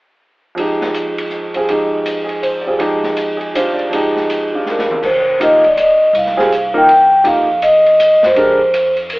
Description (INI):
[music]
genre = modal jazz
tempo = 162 BPM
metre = 3/4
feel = swing 64% on 8ths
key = F dorian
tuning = A4 = 440 Hz
[part]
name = clear upright piano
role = accompaniment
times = 0.6-8.6 s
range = F2 to D5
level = -16 LUFS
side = right 1 dB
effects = none
[part]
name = open jazz drum kit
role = drums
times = 0.6-9.2 s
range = crash cymbal, hi-hat, kick drum, ride cymbal, snare drum, toms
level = -24 LUFS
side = equal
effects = none
[part]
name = vibraphone with soft mallets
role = melody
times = 4.7-9.2 s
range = Bb4 to G5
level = -10 LUFS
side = equal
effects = none
[part]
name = upright bass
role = bass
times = 5.0-9.2 s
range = F1 to F2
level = -33 LUFS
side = equal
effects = none
[sound]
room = wet studio reverb, RT60 0.8 s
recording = band playing live in one room, telephone sound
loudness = -11 LUFS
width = side -22 dB against mid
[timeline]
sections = 0.6-5.0 A section; 5.0-9.2 B section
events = drum fill 4.7-5.0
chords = 0.6 Fm9; 5.0 F7sus2